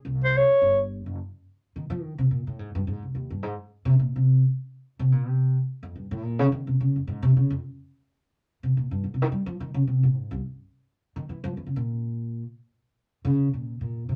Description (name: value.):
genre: jazz.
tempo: 214 BPM.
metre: 4/4.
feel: swing 59% on 8ths.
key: F minor.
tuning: A4 = 439 Hz.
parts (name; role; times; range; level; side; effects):
upright bass; bass; 0.0-14.2 s; Gb1 to G3; -26 LUFS; equal; none.
clear clarinet; melody; 0.2-0.8 s; C5 to Db5; -21 LUFS; equal; none.
room: wet club ambience, RT60 0.5 s.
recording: none.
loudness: -25 LUFS.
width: mono.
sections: 0.0-1.2 A section; 1.2-14.2 B section.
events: upright bass solo 1.2-14.2.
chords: 0.1 C5; 1.2 Fm9 (rootless); 3.4 Bbsus2; 5.7 Bbm9; 7.9 F7sus2; 10.2 Cm; 11.3 Bb(b5, no3); 12.4 N.C..